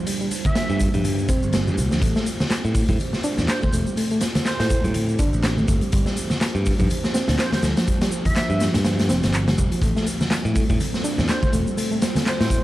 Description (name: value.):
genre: breakbeat, breaks.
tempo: 123 BPM.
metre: 4/4.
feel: swing 57% on 16ths.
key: A minor.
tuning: A4 = 440 Hz.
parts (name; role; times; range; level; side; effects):
warbly tape-like pad; sustained chords; 0.0-12.6 s; F3 to C5; -30 LUFS; right 3 dB; chorus, built-in reverb, vintage 12-bit sampler grit, sidechain pumping.
reed electric piano; riff; 0.0-12.6 s; F3 to D4; -27 LUFS; equal; overdrive, fast tremolo.
electronic shaker and handclaps; drums; 0.1-12.6 s; none; -32 LUFS; equal; none.
raw garage drum kit; drums; 0.1-12.6 s; hi-hat, kick drum, snare drum; -22 LUFS; equal; none.
airy dreamy lead; melody; 0.5-12.6 s; C5 to E5; -30 LUFS; equal; chorus, telephone sound, analog delay.
congas; percussion; 0.5-12.2 s; none; -28 LUFS; equal; none.
modern bright picked electric bass; bass; 0.7-12.6 s; E1 to A2; -23 LUFS; equal; tube saturation.
room: light reverb.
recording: vinyl crackle.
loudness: -19 LUFS.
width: side -16 dB against mid.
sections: 0.0-12.6 A section.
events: none.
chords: 0.0 Gsus4; 2.0 Am7; 5.9 G7sus4; 9.8 Am7.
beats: | 0.07 0.56 1.04 1.53 | 2.02 2.51 3.00 3.48 | 3.97 4.46 4.95 5.43 | 5.92 6.41 6.90 7.39 | 7.87 8.36 8.85 9.34 | 9.83 10.31 10.80 11.29 | 11.78 12.27.